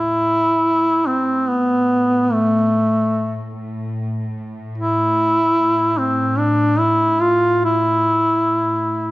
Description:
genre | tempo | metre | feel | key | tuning
caucasian folk | free time | none | none | A minor | A4 = 442 Hz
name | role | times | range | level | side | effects
warm duduk | melody | 0.0-9.1 s | A3 to F4 | -15 LUFS | equal | none
warm studio string section | drone | 0.0-9.1 s | A2 | -26 LUFS | equal | none
room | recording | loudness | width
moderate concert hall reverb, RT60 1.9 s | worn, warbling old tape, cassette tape, warbly pitch drift | -15 LUFS | side -18 dB against mid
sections
0.0-9.1 A section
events
none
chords
none

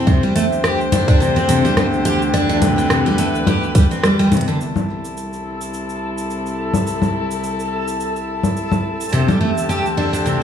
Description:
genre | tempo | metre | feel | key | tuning
folktronica | 106 BPM | 4/4 | swing 56% on 16ths | unclear | A4 = 441 Hz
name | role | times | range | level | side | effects
warm string quartet | sustained chords | 0.0-10.4 s | C2 to C5 | -21 LUFS | left 1 dB | low-pass filter
picked twelve-string acoustic guitar | arpeggios | 0.0-4.6, 9.1-10.4 s | C3 to G4 | -17 LUFS | equal | digital delay
electronic kick drum | drums | 0.1-3.9 s | none | -13 LUFS | right 1 dB | none
organic electronic drum kit | drums | 0.1-10.4 s | congas, hi-hat, rim click, shaker | -21 LUFS | left 2 dB | none
backwards swelling texture | texture | 5.2-10.4 s | A4 to A5 | -27 LUFS | equal | built-in reverb
room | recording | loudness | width
light reverb | studio reverb | -15 LUFS | side -8 dB against mid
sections
0.0-4.6 A section; 4.6-10.4 B section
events
band accent 4.0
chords
0.1 D7sus4; 4.6 C6; 9.1 D7sus4

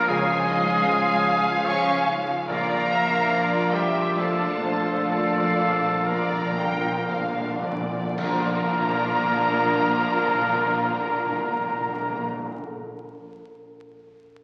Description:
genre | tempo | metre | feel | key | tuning
cinematic, emotional film score for orchestra | 54-76 BPM | 3/4 | rubato | unclear | A4 = 442 Hz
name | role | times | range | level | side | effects
clear studio violin section | melody | 0.0-12.2 s | G5 to Db6 | -34 LUFS | equal | none
bright clarinet | second line | 0.0-12.3 s | G4 to Db5 | -35 LUFS | equal | none
flute section | second line | 0.0-12.3 s | E5 to Bb5 | -30 LUFS | equal | none
rich studio violin section | second line | 0.0-12.3 s | D4 to G5 | -33 LUFS | equal | none
warm oboe | second line | 0.0-12.3 s | G4 to Db5 | -30 LUFS | equal | none
bright baby grand piano | accompaniment | 0.0-14.4 s | Bb1 to F5 | -38 LUFS | equal | none
rich studio viola section | accompaniment | 0.0-12.2 s | Db3 to F4 | -36 LUFS | equal | none
mellow French horn section | sustained chords | 0.0-12.3 s | F3 to D4 | -35 LUFS | equal | none
concert harp | arpeggios | 0.0-12.8 s | Bb2 to F5 | -35 LUFS | equal | none
warm studio cello section | bass | 0.0-12.2 s | G3 to Db4 | -37 LUFS | equal | none
warm studio double bass section | bass | 0.0-12.3 s | Bb1 to Db2 | -45 LUFS | equal | none
timpani | percussion | 2.5-12.5 s | Bb2 | -36 LUFS | equal | none
clash cymbals and concert bass drum | percussion | 8.2-10.3 s | none | -44 LUFS | equal | none
room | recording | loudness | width
wet concert hall reverb, RT60 2.1 s | very old 78 rpm record, vinyl crackle | -23 LUFS | mono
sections
0.0-8.2 A section; 8.2-11.5 B section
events
slowing down 1.3-8.2; timpani fill 2.5-8.2; band accent 8.2-9.3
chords
0.1 Db; 2.5 Bb

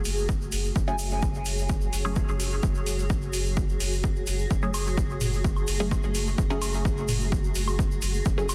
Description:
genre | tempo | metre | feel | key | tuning
dub techno | 128 BPM | 4/4 | straight | F# minor | A4 = 440 Hz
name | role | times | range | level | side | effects
granular cloud pad | sustained chords | 0.0-8.5 s | A3 to C#5 | -37 LUFS | equal | built-in reverb, sidechain pumping
tube shaker | percussion | 0.0-8.5 s | none | -42 LUFS | equal | none
soft dub sub bass | bass | 0.1-8.5 s | F#1 | -32 LUFS | equal | tube saturation, sidechain pumping
electronic hi-hat | drums | 0.1-8.5 s | none | -37 LUFS | equal | overdrive, studio reverb
electronic kick drum | drums | 0.3-8.4 s | none | -29 LUFS | equal | overdrive, studio reverb
filtered dub chord stab | stabs | 0.9-8.5 s | F#3 to G#4 | -36 LUFS | equal | phaser, sidechain pumping, dub echo
electronic woodblock and toms | percussion | 4.7-8.5 s | none | -36 LUFS | equal | overdrive, sidechain pumping on perc, studio reverb, sidechain pumping on toms, dub echo
room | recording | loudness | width
light reverb | dense, heavily limited modern master, vinyl crackle | -27 LUFS | mono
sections
0.0-8.5 A section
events
none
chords
0.0 F#madd9

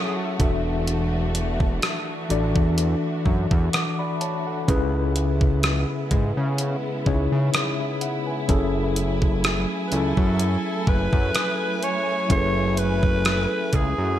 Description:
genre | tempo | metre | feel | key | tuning
contemporary R&B | 63 BPM | 4/4 | swing 54% on 16ths | F# minor | A4 = 440 Hz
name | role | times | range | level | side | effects
breathy alto saxophone | melody | 0.0-0.4, 9.9-14.2 s | E4 to C#5 | -27 LUFS | equal | digital delay
mellow tine electric piano | accompaniment | 0.0-14.2 s | C#3 to D6 | -25 LUFS | left 2 dB | medium stereo tremolo
warm studio string section | sustained chords | 0.0-14.2 s | C#3 to G#5 | -31 LUFS | right 1 dB | none
fat analog bass | bass | 0.4-14.2 s | E1 to C#3 | -24 LUFS | equal | none
gated 80s digital drum machine | drums | 0.4-14.0 s | hi-hat, kick drum, rim click | -23 LUFS | equal | gated reverb
room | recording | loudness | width
light reverb | bright 1980s-style digital production | -20 LUFS | side -12 dB against mid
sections
0.0-14.2 A section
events
none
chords
0.4 E9sus4; 4.7 C#m7; 8.5 F#m9

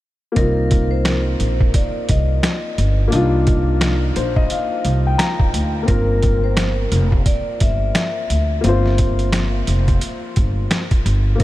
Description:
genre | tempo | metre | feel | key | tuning
hip hop, boom-bap hip-hop | 87 BPM | 4/4 | swing 60% on 16ths | C minor | A4 = 439 Hz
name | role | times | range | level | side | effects
dark concert grand piano | accompaniment | 0.3-11.4 s | Bb3 to Bb5 | -23 LUFS | left 3 dB | cassette tape, high-pass filter, low-pass filter
vibraphone with medium hard mallets | melody | 0.4-11.4 s | Bb4 to E5 | -27 LUFS | left 1 dB | high-pass filter, low-pass filter, tape echo
upright bass | bass | 0.4-11.4 s | F1 to D2 | -18 LUFS | equal | none
trip hop sampler-style drum kit | drums | 0.4-11.4 s | hi-hat, kick drum, snare drum | -20 LUFS | equal | none
room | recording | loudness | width
light reverb, small room ambience | none | -15 LUFS | side -16 dB against mid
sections
0.4-11.4 A section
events
grand piano fill 3.8-5.9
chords
0.4 Cm11; 5.9 Gm7

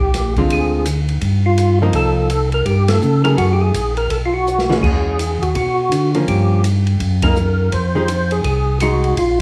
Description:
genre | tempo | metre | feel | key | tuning
soul jazz organ trio | 166 BPM | 4/4 | swing 63% on 8ths | unclear | A4 = 440 Hz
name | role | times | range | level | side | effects
percussive tonewheel organ | melody | 0.0-9.4 s | F4 to C5 | -21 LUFS | equal | slow rotary speaker, chorus vibrato, plate reverb
mellow tonewheel organ | bass | 0.0-9.4 s | Bb1 to D3 | -19 LUFS | equal | overdrive, chorus vibrato, slow rotary speaker
open jazz drum kit | drums | 0.0-9.3 s | crash cymbal, hi-hat, kick drum, ride cymbal, snare drum | -26 LUFS | equal | none
archtop guitar, miked and amplified | accompaniment | 0.4-9.2 s | D3 to Ab4 | -22 LUFS | equal | none
room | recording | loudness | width
moderate studio reverb, RT60 0.8 s | studio ambience | -16 LUFS | mono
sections
0.0-9.4 A section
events
band accent 2.8, 7.2; drum fill 4.5-4.8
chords
0.5 Dm7b5; 1.2 Gm7; 1.9 Cm7; 3.4 Gbm9; 4.1 Bsus2; 4.8 E69; 6.3 Gm7b5; 7.0 Gb6; 7.7 Fm7

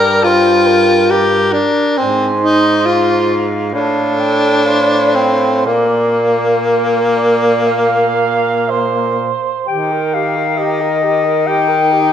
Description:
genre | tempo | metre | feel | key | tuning
classical, lyrical piece for single-reed quartet | 58-70 BPM | 4/4 | rubato | Eb major | A4 = 440 Hz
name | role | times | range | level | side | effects
warm clarinet | melody | 0.0-12.1 s | Eb5 to Bb5 | -20 LUFS | left 8 dB | none
warm alto saxophone | second line | 0.0-12.1 s | G4 to F5 | -18 LUFS | right 6 dB | none
bright tenor saxophone | accompaniment | 0.0-12.1 s | Bb3 to Bb4 | -13 LUFS | left 2 dB | none
warm baritone saxophone | bass | 0.0-12.1 s | G2 to Eb3 | -19 LUFS | right 2 dB | none
room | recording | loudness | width
moderate scoring stage reverb, RT60 1.7 s | recorded in a church or concert hall | -11 LUFS | side -9 dB against mid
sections
0.0-9.7 A section; 9.7-12.1 B section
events
none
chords
0.0 Eb/G (rootless); 2.0 Fm/Ab; 3.7 F/A; 5.7 Bb; 9.7 Eb

